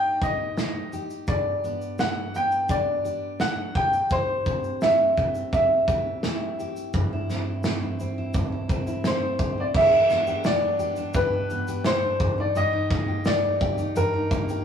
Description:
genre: acoustic pop.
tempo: 85 BPM.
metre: 4/4.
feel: straight.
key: G major.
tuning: A4 = 440 Hz.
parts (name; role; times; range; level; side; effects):
bright upright piano; melody; 0.0-14.6 s; Bb4 to G5; -23 LUFS; equal; none.
picked steel-string acoustic guitar; accompaniment; 0.0-14.6 s; G2 to G4; -29 LUFS; equal; none.
loose indie drum kit; drums; 0.2-14.6 s; crash cymbal, kick drum, shaker, snare drum; -28 LUFS; right 1 dB; none.
room: wet studio reverb, RT60 0.5 s.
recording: rough rehearsal-room recording, tube saturation, small room reverb.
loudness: -22 LUFS.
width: side -8 dB against mid.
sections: 0.0-6.9 A section; 6.9-9.7 B section; 9.7-14.6 C section.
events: none.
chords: 0.0 Eb/G; 1.3 G; 4.1 C/G; 9.7 G; 12.2 Eb/G.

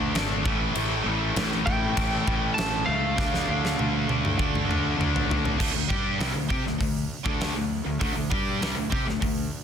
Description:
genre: hard rock.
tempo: 99 BPM.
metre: 4/4.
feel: straight.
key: D minor.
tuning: A4 = 437 Hz.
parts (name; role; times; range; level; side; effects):
lightly driven lead guitar; melody; 0.0-4.9 s; F5 to A5; -30 LUFS; equal; tape echo.
distorted electric guitar; riff; 0.0-9.5 s; A2 to G4; -31 LUFS; right 13 dB; overdrive.
overdriven electric guitar; riff; 0.0-9.5 s; A2 to G4; -32 LUFS; left 14 dB; none.
sludgy distorted guitar; riff; 0.0-9.5 s; A2 to G4; -31 LUFS; left 2 dB; overdrive.
fuzz fingered electric bass; bass; 0.0-9.5 s; G#1 to C3; -30 LUFS; equal; overdrive.
huge arena drum kit; drums; 0.2-9.4 s; crash cymbal, hi-hat, kick drum, snare drum, toms; -28 LUFS; equal; none.
room: studio reverb.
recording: dense, heavily limited modern master.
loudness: -23 LUFS.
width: side -8 dB against mid.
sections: 0.0-5.6 A section; 5.6-9.6 B section.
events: drum fill 3.2-5.6.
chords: 0.5 A5; 3.2 Dm; 5.6 D5.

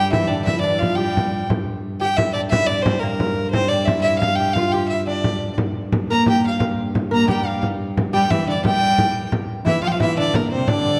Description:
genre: medieval dance.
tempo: 117 BPM (dotted quarters).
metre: 6/8.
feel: straight.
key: G dorian.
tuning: A4 = 440 Hz.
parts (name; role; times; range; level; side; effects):
clear fiddle; melody; 0.0-11.0 s; Bb4 to Bb5; -24 LUFS; equal; none.
lute; second line; 0.0-11.0 s; Bb3 to Bb4; -29 LUFS; equal; none.
rich viola da gamba; second line; 0.0-1.5, 6.1-11.0 s; Bb2 to Bb3; -25 LUFS; equal; none.
dark viola da gamba; drone; 0.0-11.0 s; G2; -30 LUFS; equal; none.
frame drum; percussion; 0.1-10.8 s; none; -25 LUFS; equal; none.
room: wet scoring stage reverb, RT60 1.8 s.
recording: dark, warm production.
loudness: -20 LUFS.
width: mono.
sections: 0.0-1.5 A section; 1.5-9.7 A section; 9.7-11.0 B section.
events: none.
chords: none.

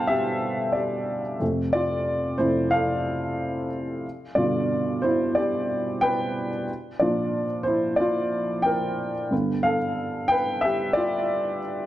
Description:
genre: pop.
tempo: 91 BPM.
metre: 4/4.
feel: straight.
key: unclear.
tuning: A4 = 444 Hz.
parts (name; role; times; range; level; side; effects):
dark upright piano; solo; 0.0-11.9 s; F2 to A5; -22 LUFS; equal; tape echo.
room: light reverb.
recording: none.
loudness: -22 LUFS.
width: side -14 dB against mid.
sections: 0.0-11.9 A section.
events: upright piano solo 0.0-11.9.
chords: 0.0 Gadd9; 1.4 F; 4.0 G; 6.7 Bb; 9.3 Gadd9.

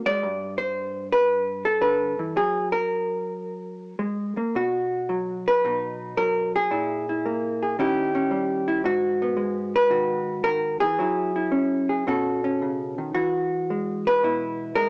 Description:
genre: solo jazz.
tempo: 112 BPM.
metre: 4/4.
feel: swing 68% on 8ths, rubato.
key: B major from 4.5 s.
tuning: A4 = 435 Hz.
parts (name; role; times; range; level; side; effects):
hollow-body jazz guitar; solo; 0.0-14.9 s; G2 to D5; -21 LUFS; equal; cassette tape.
room: moderate spring reverb, RT60 2.0 s.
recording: home recording on cassette, small speaker sound.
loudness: -21 LUFS.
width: side -38 dB against mid.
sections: 0.0-4.5 A section; 4.5-14.9 B section.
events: none.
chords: 0.2 Gadd9; 2.4 F#add9; 4.5 B; 6.7 G#sus2/A#; 7.8 D#7b9; 8.8 G#m7; 11.0 F#sus2; 12.1 B9; 13.1 E.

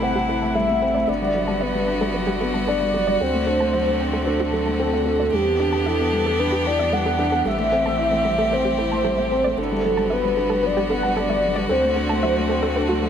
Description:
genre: piano and strings electronica.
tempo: 113 BPM.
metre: 4/4.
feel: straight.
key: A dorian.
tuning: A4 = 442 Hz.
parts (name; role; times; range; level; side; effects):
warm velvety synth lead; melody; 0.0-13.1 s; G4 to F#5; -22 LUFS; equal; chorus.
clear string quartet; sustained chords; 0.0-13.1 s; C3 to G4; -26 LUFS; equal; none.
soft round pluck; arpeggios; 0.0-13.1 s; F#4 to A5; -30 LUFS; right 2 dB; chorus, digital delay.
felt-muted upright piano; riff; 0.0-13.1 s; F#3 to E4; -24 LUFS; left 2 dB; none.
warm sub bass; bass; 0.0-13.1 s; G1 to E2; -30 LUFS; right 1 dB; none.
room: moderate huge ambient reverb, RT60 7.7 s.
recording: none.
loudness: -18 LUFS.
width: side -8 dB against mid.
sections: 0.0-13.1 A section.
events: filter sweep on synth arpeggio sound 0.0-13.1.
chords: 0.0 Am7; 1.1 Gmaj7; 3.2 D7; 5.3 Em7; 7.5 Am7; 9.6 Gmaj7; 11.7 D7.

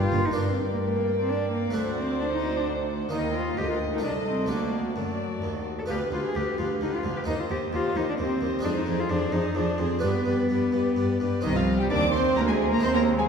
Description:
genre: classical, baroque-style concerto movement with solo episodes.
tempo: 130 BPM.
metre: 3/4.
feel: straight.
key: G minor, C minor from 5.9 s.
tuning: A4 = 440 Hz.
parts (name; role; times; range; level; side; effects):
rich cello; melody; 0.0-13.3 s; Eb3 to A4; -28 LUFS; left 1 dB; none.
warm chamber violin section; melody; 0.0-13.2 s; D5 to D6; -38 LUFS; left 2 dB; none.
rich chamber violin section; second line; 0.0-13.3 s; Eb4 to Eb5; -33 LUFS; equal; none.
harpsichord; accompaniment; 0.0-13.3 s; C2 to G4; -32 LUFS; equal; none.
dark chamber viola section; accompaniment; 0.1-13.3 s; Bb3 to C5; -32 LUFS; equal; none.
rich chamber double bass section; bass; 0.1-0.2, 11.4-13.3 s; G1 to Eb2; -31 LUFS; right 2 dB; none.
warm chamber cello section; bass; 0.1-13.3 s; C2 to G2; -30 LUFS; right 2 dB; none.
room: wet concert hall reverb, RT60 2.1 s.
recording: heard from further back in the room.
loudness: -24 LUFS.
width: side -6 dB against mid.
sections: 0.4-11.4 A section; 11.4-13.3 B section.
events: none.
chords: 0.4 Gm; 1.7 D7; 3.1 Eb; 4.0 Adim/C; 4.5 D; 5.9 G7/D; 7.3 Cm/Eb; 8.6 Dm7b5/F; 10.0 G; 11.4 Cm.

